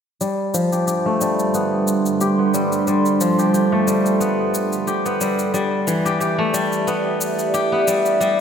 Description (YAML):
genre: organic downtempo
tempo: 90 BPM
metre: 4/4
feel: swing 55% on 16ths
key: G mixolydian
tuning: A4 = 441 Hz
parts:
  - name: warbly tape-like pad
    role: sustained chords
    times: 1.0-8.4 s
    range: G3 to C6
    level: -20 LUFS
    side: right 2 dB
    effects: chorus, built-in reverb
  - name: steel-string zither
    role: arpeggios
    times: 0.2-8.4 s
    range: E3 to G4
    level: -20 LUFS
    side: left 1 dB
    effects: low-pass filter, diffuse ambient delay
  - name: cabasa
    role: drums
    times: 0.2-8.4 s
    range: none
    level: -30 LUFS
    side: left 3 dB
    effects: none
room: wet plate reverb, RT60 2.2 s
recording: dreamy mix soaked in reverb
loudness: -17 LUFS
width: side -7 dB against mid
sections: 0.2-8.4 A section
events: filter sweep on guzheng 0.2-8.4; filter sweep on ambient pad 0.2-8.4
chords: 0.2 G7sus4; 5.5 C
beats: | 0.21 0.87 1.54 2.21 | 2.87 3.54 4.21 4.87 | 5.54 6.21 6.87 7.54 | 8.21